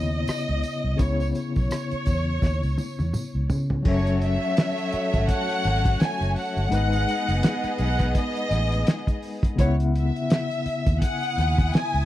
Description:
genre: lush 1970s-style soul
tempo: 84 BPM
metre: 4/4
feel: swing 58% on 16ths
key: C# minor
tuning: A4 = 440 Hz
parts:
  - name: warm studio violin section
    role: melody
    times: 0.0-12.1 s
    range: C#5 to G#5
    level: -29 LUFS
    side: equal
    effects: none
  - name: barky tine electric piano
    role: accompaniment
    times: 0.0-12.1 s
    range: C#3 to F#5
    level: -29 LUFS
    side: left 4 dB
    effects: overdrive, fast tremolo
  - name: vintage muted fingered electric bass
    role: bass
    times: 0.0-12.1 s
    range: F#1 to C#3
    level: -24 LUFS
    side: equal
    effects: none
  - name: cloth-damped thuddy drum kit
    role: drums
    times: 0.3-12.1 s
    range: crash cymbal, hi-hat, kick drum, rim click, snare drum, toms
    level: -23 LUFS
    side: equal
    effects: none
  - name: tambourine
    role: percussion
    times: 0.3-3.7 s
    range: none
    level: -45 LUFS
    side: right 3 dB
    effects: none
  - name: rich studio violin section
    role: second line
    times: 3.9-12.1 s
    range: A3 to D#6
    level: -31 LUFS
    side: right 1 dB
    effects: none
room: little or no reverb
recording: dry, close 1970s-style studio recording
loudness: -21 LUFS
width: side -14 dB against mid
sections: 0.0-3.9 A section; 3.9-12.1 B section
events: drum fill 2.4-3.9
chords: 0.0 C#m9; 1.0 C#m7; 3.9 F#m7; 6.7 G#m7; 9.6 C#m11

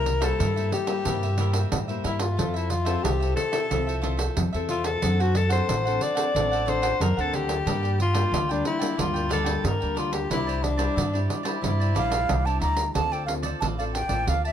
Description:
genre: samba and choro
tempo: 91 BPM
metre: 4/4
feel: straight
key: unclear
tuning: A4 = 439 Hz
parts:
  - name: breathy tenor saxophone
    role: second line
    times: 0.0-12.6 s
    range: D4 to D5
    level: -27 LUFS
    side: left 4 dB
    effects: tape echo
  - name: cavaquinho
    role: accompaniment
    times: 0.0-14.5 s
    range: D4 to A5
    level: -34 LUFS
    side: right 7 dB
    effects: none
  - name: nylon-string guitar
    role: accompaniment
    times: 0.0-14.5 s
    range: G2 to A4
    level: -32 LUFS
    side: left 4 dB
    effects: none
  - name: upright bass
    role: bass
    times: 0.0-14.5 s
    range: A1 to A2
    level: -26 LUFS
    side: equal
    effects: none
  - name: pandeiro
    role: percussion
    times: 0.1-14.5 s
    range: none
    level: -30 LUFS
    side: right 3 dB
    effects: none
  - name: breathy concert flute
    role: melody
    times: 12.0-14.5 s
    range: E5 to Bb5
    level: -27 LUFS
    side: right 2 dB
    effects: none
room: light reverb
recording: close, detailed microphones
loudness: -22 LUFS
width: side -9 dB against mid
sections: 0.0-13.0 A section; 13.0-14.5 B section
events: tenor saxophone solo 0.0-13.0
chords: 0.0 C7; 2.4 Fmaj7; 5.0 D7; 7.7 Gm; 10.3 Cadd9; 13.0 Dm7

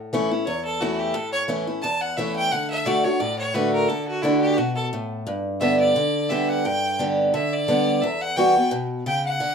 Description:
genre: bluegrass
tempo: 174 BPM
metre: 4/4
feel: swing 55% on 8ths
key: D major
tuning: A4 = 442 Hz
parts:
  - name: picked acoustic archtop guitar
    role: accompaniment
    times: 0.0-9.5 s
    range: E2 to G4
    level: -22 LUFS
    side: equal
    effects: none
  - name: bright fiddle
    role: melody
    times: 0.5-9.5 s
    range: E4 to A5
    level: -25 LUFS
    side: equal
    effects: none
room: moderate studio ambience, RT60 0.4 s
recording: none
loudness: -20 LUFS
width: side -6 dB against mid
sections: 0.0-9.5 A section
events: fiddle solo 0.0-9.5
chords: 0.0 A; 2.5 D; 5.3 G; 8.0 Emadd9

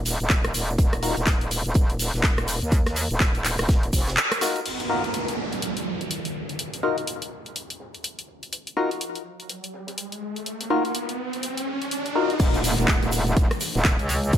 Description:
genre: bass house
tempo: 124 BPM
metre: 4/4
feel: swing 60% on 16ths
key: Eb minor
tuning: A4 = 440 Hz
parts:
  - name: metallic wobble bass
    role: bass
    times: 0.0-4.2, 12.4-14.4 s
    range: Eb1 to Eb2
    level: -25 LUFS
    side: equal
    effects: chorus, overdrive, sidechain pumping
  - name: deep reggae drum kit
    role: drums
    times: 0.1-14.4 s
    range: hi-hat, snare drum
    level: -39 LUFS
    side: right 2 dB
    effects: none
  - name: house drum kit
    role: drums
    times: 0.1-14.4 s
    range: crash cymbal, handclaps, hi-hat, rim click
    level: -27 LUFS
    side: equal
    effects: none
  - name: egg shaker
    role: percussion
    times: 0.1-4.6, 12.4-14.4 s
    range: none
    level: -34 LUFS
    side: right 4 dB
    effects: none
  - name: electronic kick drum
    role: drums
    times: 0.3-4.0, 12.4-14.4 s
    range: none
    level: -21 LUFS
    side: equal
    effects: none
  - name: percussive organ stab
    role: stabs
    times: 1.0-1.2, 4.4-12.3 s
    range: Eb4 to Bb4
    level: -26 LUFS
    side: left 2 dB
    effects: chorus, phaser, sidechain pumping, ping-pong delay
  - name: downlifter and riser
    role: sound effects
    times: 4.7-14.4 s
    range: none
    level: -30 LUFS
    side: right 1 dB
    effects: none
room: light reverb, studio ambience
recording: none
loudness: -22 LUFS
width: side -10 dB against mid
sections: 0.0-4.7 A section; 4.7-12.4 B section; 12.4-14.4 C section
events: band accent 4.2; riser 9.3-12.4; drop 12.4-14.4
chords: 0.0 Ebmadd9; 12.4 N.C.

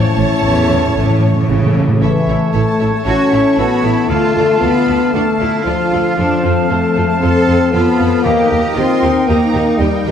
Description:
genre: cinematic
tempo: 115 BPM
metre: 4/4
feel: straight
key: unclear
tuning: A4 = 440 Hz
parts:
  - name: warm symphonic violin section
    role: melody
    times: 0.0-10.1 s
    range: E5 to C#6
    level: -27 LUFS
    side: equal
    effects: none
  - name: rich studio violin section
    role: second line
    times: 0.0-10.1 s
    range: A4 to E5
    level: -29 LUFS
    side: right 1 dB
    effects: none
  - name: rich studio viola section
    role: accompaniment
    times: 0.0-10.1 s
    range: E4 to C#5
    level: -26 LUFS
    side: right 1 dB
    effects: none
  - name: warm French horn section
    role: sustained chords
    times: 0.0-10.1 s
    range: E3 to E4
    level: -15 LUFS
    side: left 2 dB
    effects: none
  - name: concert harp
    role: arpeggios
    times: 0.0-10.1 s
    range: A2 to D#5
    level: -22 LUFS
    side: left 8 dB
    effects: none
  - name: timpani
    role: percussion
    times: 0.0-1.9 s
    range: A2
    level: -18 LUFS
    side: right 1 dB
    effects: none
  - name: rich symphonic cello section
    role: bass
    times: 0.2-10.1 s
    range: E2 to A4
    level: -20 LUFS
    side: right 3 dB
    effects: none
  - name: rich symphonic double bass section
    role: bass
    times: 0.2-10.1 s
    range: A1 to F2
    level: -20 LUFS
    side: right 4 dB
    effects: none
  - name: clear oboe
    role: second line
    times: 2.0-10.0 s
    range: C#5 to F5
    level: -23 LUFS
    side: right 1 dB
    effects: none
  - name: mellow clarinet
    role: second line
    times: 2.0-10.0 s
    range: A4 to A#4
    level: -25 LUFS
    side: left 4 dB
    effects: none
  - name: mellow small flute group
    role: second line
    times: 2.0-10.0 s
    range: G5 to A5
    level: -24 LUFS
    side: right 2 dB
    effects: none
room: moderate scoring stage reverb, RT60 1.8 s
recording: none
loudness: -11 LUFS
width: side -8 dB against mid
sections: 0.0-2.0 A section; 2.0-10.1 B section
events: timpani fill 0.0-2.0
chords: 0.0 A; 4.1 Dm; 6.2 F; 8.2 D#

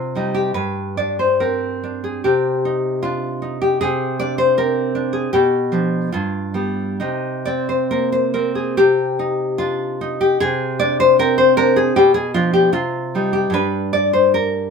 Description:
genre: romantic piece for solo classical guitar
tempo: 64-81 BPM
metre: 2/4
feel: rubato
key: C minor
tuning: A4 = 439 Hz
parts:
  - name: nylon-string guitar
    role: solo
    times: 0.0-14.7 s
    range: G2 to D5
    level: -16 LUFS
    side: left 1 dB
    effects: none
room: light reverb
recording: minimal, uncompressed stereo recording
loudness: -16 LUFS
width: side -5 dB against mid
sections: 0.0-8.8 A section; 8.8-14.7 A section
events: none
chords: 0.0 Cm; 0.6 G5; 2.3 Cm; 3.8 Bb9/C; 5.3 G7/B; 6.1 G7; 7.0 Cm9; 8.8 Cm; 10.4 Bb9/C; 12.0 Bdim7; 12.7 Cm; 13.5 G5

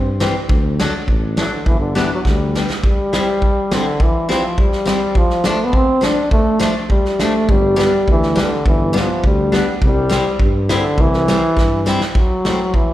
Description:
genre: alpine folk, alpine dance band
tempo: 103 BPM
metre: 2/4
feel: straight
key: C major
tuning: A4 = 440 Hz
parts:
  - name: clear euphonium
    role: melody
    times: 0.0-12.9 s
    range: D3 to D4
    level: -18 LUFS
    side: equal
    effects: slapback echo
  - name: mellow tuba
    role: bass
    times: 0.0-2.6, 7.5-11.9 s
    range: G1 to G2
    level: -21 LUFS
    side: equal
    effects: none
  - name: picked steel-string acoustic guitar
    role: accompaniment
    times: 0.2-12.6 s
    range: E3 to E4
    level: -22 LUFS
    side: left 2 dB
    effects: slapback echo
  - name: loose indie drum kit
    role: drums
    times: 0.2-12.9 s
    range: hi-hat, kick drum, snare drum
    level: -18 LUFS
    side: equal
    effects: none
room: light reverb, small room ambience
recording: live gig heard through the venue's PA, recital hall reverb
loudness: -14 LUFS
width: side -14 dB against mid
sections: 0.0-2.8 A section; 2.8-12.2 B section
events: drum fill 2.2-2.8, 11.6-12.2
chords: 0.5 D; 1.7 G; 2.8 C; 5.2 Dm; 7.5 G; 9.8 C; 12.2 Am

